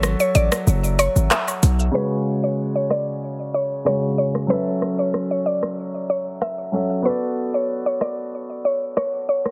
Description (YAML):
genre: dancehall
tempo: 94 BPM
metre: 4/4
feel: straight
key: F# minor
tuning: A4 = 440 Hz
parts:
  - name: warm grand piano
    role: accompaniment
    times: 0.0-9.5 s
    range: C#3 to E5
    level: -27 LUFS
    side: equal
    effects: none
  - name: hard-hitting 808-style bass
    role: bass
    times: 0.0-1.9 s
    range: F#1 to B1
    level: -20 LUFS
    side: equal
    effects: none
  - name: island pop drum kit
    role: drums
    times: 0.0-9.5 s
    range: handclaps, hi-hat, rim click, shaker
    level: -25 LUFS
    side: equal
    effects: none
  - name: mallet-like synth pluck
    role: melody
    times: 0.2-9.4 s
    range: B4 to E5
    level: -25 LUFS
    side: equal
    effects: chorus, delay
  - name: cabasa and woodblock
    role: percussion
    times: 0.4-1.8 s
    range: none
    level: -32 LUFS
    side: equal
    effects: none
room: light reverb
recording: heavily compressed radio sound, low-pass filter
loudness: -22 LUFS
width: mono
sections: 0.0-1.9 A section; 1.9-9.5 B section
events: kick muted 0.7-1.9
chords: 0.0 F#m7; 1.9 C#sus4; 4.5 F#m7; 7.1 Bm7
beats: 0.03 0.67 1.31 | 1.95 2.59 3.22 3.86 | 4.50 5.14 5.78 6.42 | 7.05 7.69 8.33 8.97